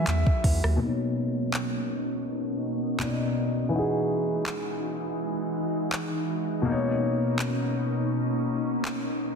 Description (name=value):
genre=contemporary R&B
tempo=82 BPM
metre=4/4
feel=swing 54% on 16ths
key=unclear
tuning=A4 = 440 Hz
part: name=warm concert grand piano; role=accompaniment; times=0.0-9.4 s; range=Cb3 to G#5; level=-29 LUFS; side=left 2 dB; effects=low-pass filter
part: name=glassy FM pad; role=sustained chords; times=0.0-9.4 s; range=Cb3 to F#4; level=-29 LUFS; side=equal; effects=ensemble chorus, built-in reverb, low-pass filter
part: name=round analog bass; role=bass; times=0.0-0.8 s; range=D#2 to E2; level=-24 LUFS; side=right 1 dB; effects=none
part: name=smooth R&B drum kit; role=drums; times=0.1-9.0 s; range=handclaps, hi-hat, kick drum, rim click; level=-30 LUFS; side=equal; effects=none
room=light reverb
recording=dense, heavily limited modern master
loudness=-25 LUFS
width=side -6 dB against mid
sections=0.8-9.4 A section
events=grand piano fill 0.0-0.8; filter sweep 0.8-9.4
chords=0.0 Emaj9; 0.8 Cbmaj9; 3.7 Emaj9; 6.7 Cbmaj9